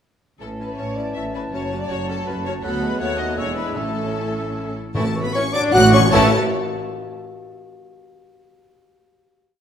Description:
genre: quick classical-period movement for symphony orchestra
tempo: 150-166 BPM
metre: 3/4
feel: rubato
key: A major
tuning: A4 = 440 Hz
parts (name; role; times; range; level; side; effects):
- rich studio violin section; melody; 0.4-6.3 s; G#5 to F#6; -25 LUFS; left 4 dB; none
- clear clarinet; second line; 0.4-6.3 s; B3 to F#5; -27 LUFS; left 2 dB; none
- mellow baroque flute; second line; 0.4-6.3 s; A4 to F#5; -29 LUFS; left 1 dB; none
- rich studio violin section; second line; 0.4-6.3 s; C#4 to E5; -30 LUFS; left 5 dB; none
- warm cor anglais; second line; 0.4-6.3 s; C#5 to A5; -31 LUFS; right 2 dB; none
- mellow bassoon; accompaniment; 0.4-6.3 s; E3 to A3; -30 LUFS; right 1 dB; none
- rich studio viola section; accompaniment; 0.4-6.3 s; A3 to A4; -27 LUFS; equal; none
- mellow French horn section; sustained chords; 0.4-6.3 s; F#3 to F#4; -28 LUFS; left 2 dB; none
- clear studio double bass section; bass; 0.4-6.3 s; E1 to D#2; -28 LUFS; right 4 dB; none
- warm studio cello section; bass; 0.4-6.3 s; D2 to A2; -26 LUFS; right 2 dB; none
- timpani; percussion; 3.8-6.3 s; A2; -27 LUFS; left 1 dB; none
room: wet scoring stage reverb, RT60 1.7 s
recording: none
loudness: -18 LUFS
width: side -8 dB against mid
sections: 0.4-5.0 A section; 5.0-6.1 coda; 6.1-7.3 final chord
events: timpani fill 5.5-6.1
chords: 0.4 A; 1.5 F#m; 2.6 Bm7/D; 3.0 B7/D#; 3.4 E7; 3.8 A; 5.5 D/A; 6.1 A

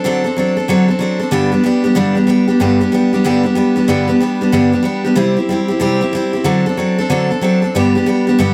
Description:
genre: rock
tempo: 187 BPM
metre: 4/4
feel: swing 64% on 8ths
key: G major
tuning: A4 = 439 Hz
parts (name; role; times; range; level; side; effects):
- picked steel-string acoustic guitar; solo; 0.0-8.5 s; G2 to A4; -14 LUFS; equal; slapback echo
room: light reverb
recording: none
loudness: -14 LUFS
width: mono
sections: 0.0-2.6 A section; 2.6-8.5 B section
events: none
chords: 0.0 D7; 1.3 G; 5.2 C; 6.5 D7; 7.7 G

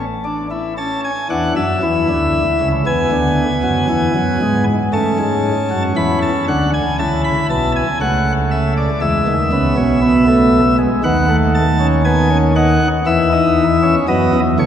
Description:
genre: classical, baroque-style 3-part fugue for pipe organ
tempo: 59 BPM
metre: 4/4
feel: straight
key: A major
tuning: A4 = 440 Hz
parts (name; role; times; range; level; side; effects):
- chamber organ, principal chorus; solo; 0.0-14.7 s; B1 to B5; -13 LUFS; equal; none
room: wet cathedral reverb, RT60 5.1 s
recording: heard from further back in the room, faint mains hum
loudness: -13 LUFS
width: side -9 dB against mid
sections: 0.8-14.7 A section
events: none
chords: 0.0 N.C.; 0.8 A; 2.9 E7; 4.9 A; 9.0 E; 11.0 B7/D#; 13.1 E5

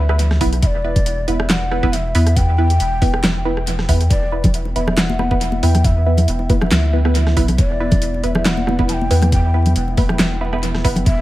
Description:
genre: deep dubstep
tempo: 138 BPM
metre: 4/4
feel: swing 54% on 16ths, half-time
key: E minor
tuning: A4 = 439 Hz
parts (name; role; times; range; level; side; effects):
- breathy mellow shakuhachi; melody; 0.0-11.2 s; D5 to A5; -25 LUFS; left 2 dB; dub echo
- filtered dub chord stab; stabs; 0.0-11.1 s; B3 to B4; -23 LUFS; right 2 dB; phaser, dub echo
- soft dub sub bass; bass; 0.0-11.2 s; E1 to E2; -18 LUFS; equal; none
- dubstep drum kit; drums; 0.1-11.2 s; handclaps, hi-hat, rim click, snare drum; -22 LUFS; equal; studio reverb, analog delay
- electronic kick drum; drums; 0.4-11.2 s; none; -16 LUFS; equal; studio reverb
- dark analog pad; sustained chords; 4.1-11.2 s; F#3 to E5; -26 LUFS; right 1 dB; chorus
- congas and bongos; percussion; 4.4-11.0 s; none; -23 LUFS; left 1 dB; dub echo
room: little or no reverb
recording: echo-heavy mix, vinyl crackle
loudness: -14 LUFS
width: side -16 dB against mid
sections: 0.0-11.2 A section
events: none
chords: 0.0 E5

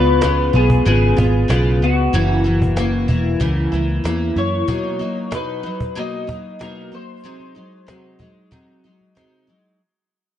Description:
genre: indie pop, bedroom pop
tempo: 94 BPM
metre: 4/4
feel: straight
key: unclear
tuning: A4 = 443 Hz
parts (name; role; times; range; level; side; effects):
- electric guitar through a small old amp; melody; 0.0-9.1 s; F#4 to D#5; -23 LUFS; left 1 dB; analog chorus, analog delay
- picked steel-string acoustic guitar; accompaniment; 0.0-9.8 s; F#2 to E#4; -20 LUFS; left 1 dB; analog chorus, warbly pitch drift
- vintage muted picked electric bass; bass; 0.0-4.6 s; E1 to F#2; -18 LUFS; equal; none
- cajon; drums; 0.2-9.6 s; none; -23 LUFS; equal; none
room: light reverb, small room ambience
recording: dark, warm production, nothing above 10.3 kHz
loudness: -15 LUFS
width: side -11 dB against mid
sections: 0.0-9.8 A section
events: fade-out 0.0-9.8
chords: 0.0 C#7; 2.1 F#7; 4.7 Bmaj7; 7.2 G#7/B#

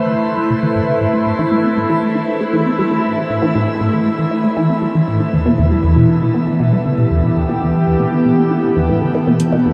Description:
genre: ambient, sequencer-driven space music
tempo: 118 BPM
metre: 4/4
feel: straight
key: A minor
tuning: A4 = 440 Hz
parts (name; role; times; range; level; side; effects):
- phased analog pad; sustained chords; 0.0-9.7 s; E3 to C5; -18 LUFS; equal; phaser, chorus
- concert harp; arpeggios; 0.0-9.7 s; A3 to A4; -33 LUFS; equal; none
- resonant blip pluck; riff; 0.0-9.7 s; E2 to E4; -19 LUFS; equal; phaser, lush chorus, analog delay
- electronic hi-hat; percussion; 9.4-9.5 s; none; -36 LUFS; equal; none
room: wet shimmer reverb, RT60 7.8 s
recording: dark, warm production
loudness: -15 LUFS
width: mono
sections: 0.0-9.7 A section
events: none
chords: 0.0 Am; 5.3 Em7

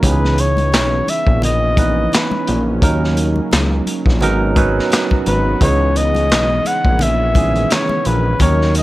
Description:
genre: R&B, neo-soul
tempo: 86 BPM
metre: 4/4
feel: swing 56% on 16ths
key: unclear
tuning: A4 = 440 Hz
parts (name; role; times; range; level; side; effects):
- warm flugelhorn; melody; 0.0-8.8 s; B4 to F#5; -19 LUFS; left 1 dB; none
- barky tine electric piano; accompaniment; 0.0-8.8 s; D#3 to B4; -20 LUFS; right 4 dB; none
- lush unison pad; sustained chords; 1.0-8.8 s; C#3 to A#4; -28 LUFS; left 1 dB; chorus
- fat analog bass; bass; 0.0-8.8 s; G#1 to D#2; -17 LUFS; equal; none
- crunchy breakbeat drum kit; drums; 0.0-8.8 s; handclaps, hi-hat, kick drum, snare drum; -18 LUFS; equal; none
- congas; percussion; 0.0-8.8 s; none; -27 LUFS; left 2 dB; none
room: little or no reverb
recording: none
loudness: -13 LUFS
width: side -17 dB against mid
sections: 0.0-8.8 A section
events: none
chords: 0.0 C#m9; 2.8 D#m7; 4.2 G#m11; 5.6 C#m9

